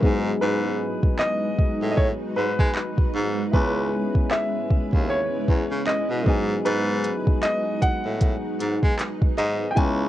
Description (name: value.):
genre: contemporary R&B.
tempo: 77 BPM.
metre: 4/4.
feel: swing 58% on 16ths.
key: unclear.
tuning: A4 = 440 Hz.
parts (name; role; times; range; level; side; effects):
soft electric-piano-like synth keys; accompaniment; 0.0-10.1 s; F#3 to G#4; -28 LUFS; left 2 dB; chorus.
granular cloud pad; sustained chords; 0.0-10.1 s; G#3 to B4; -31 LUFS; right 1 dB; built-in reverb, sidechain pumping.
bright baritone saxophone; bass; 0.0-10.1 s; C#2 to G#3; -26 LUFS; equal; none.
smooth R&B drum kit; drums; 0.0-10.0 s; handclaps, hi-hat, kick drum; -21 LUFS; equal; none.
warm grand piano; melody; 0.4-10.1 s; B4 to G#5; -27 LUFS; equal; ping-pong delay.
room: little or no reverb.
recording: worn, warbling old tape, cassette tape, warbly pitch drift.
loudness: -20 LUFS.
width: side -13 dB against mid.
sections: 0.0-10.1 A section.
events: none.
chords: 0.0 G#m7; 3.5 C#m7; 6.3 G#m7.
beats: | 0.42 1.20 1.98 2.76 | 3.54 4.32 5.09 5.87 | 6.65 7.43 8.21 8.99 | 9.77.